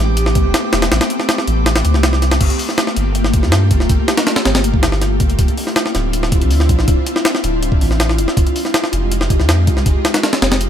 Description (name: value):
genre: drum and bass, jungle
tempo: 161 BPM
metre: 4/4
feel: straight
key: G dorian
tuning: A4 = 441 Hz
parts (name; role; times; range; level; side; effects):
- ethereal airy pad; sustained chords; 0.0-10.7 s; Ab3 to G4; -20 LUFS; left 1 dB; ensemble chorus, built-in reverb
- soft dub sub bass; bass; 0.0-10.7 s; D1 to G2; -16 LUFS; equal; none
- drifting glass-harmonics texture; texture; 0.0-2.4 s; D6; -28 LUFS; right 4 dB; chorus, built-in reverb
- jungle sampler-style drum kit; drums; 0.2-10.7 s; crash cymbal, hi-hat, kick drum, snare drum; -15 LUFS; equal; studio reverb
room: little or no reverb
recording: none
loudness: -12 LUFS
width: side -9 dB against mid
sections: 0.0-2.4 A section; 2.4-10.7 A section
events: drop 0.0-2.4, 2.4-10.7; kick drops out 1.7-2.4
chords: 0.0 Am9; 2.4 Gm9; 5.4 Dm9; 8.4 Fm9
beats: 0.17 0.54 | 0.92 1.29 1.66 2.03 | 2.41 2.78 3.15 3.52 | 3.90 4.27 4.64 5.01 | 5.39 5.76 6.13 6.51 | 6.88 7.25 7.62 8.00 | 8.37 8.74 9.12 9.49 | 9.86 10.23 10.61